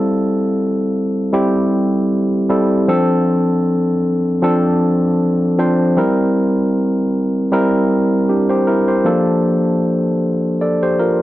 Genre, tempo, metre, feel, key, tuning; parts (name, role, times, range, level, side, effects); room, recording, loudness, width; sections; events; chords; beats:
soul; 78 BPM; 4/4; swing 54% on 16ths; D minor; A4 = 440 Hz
barky tine electric piano; solo; 0.0-11.2 s; F3 to D5; -14 LUFS; equal; overdrive
digital ambience; dry, close 1970s-style studio recording; -14 LUFS; side -15 dB against mid
0.0-11.2 A section
0.0 Am7; 2.9 Dm7; 6.0 C7; 9.1 Bbmaj7
0.56 1.34 2.11 | 2.88 3.66 4.43 5.21 | 5.98 6.75 7.53 8.30 | 9.07 9.85 10.62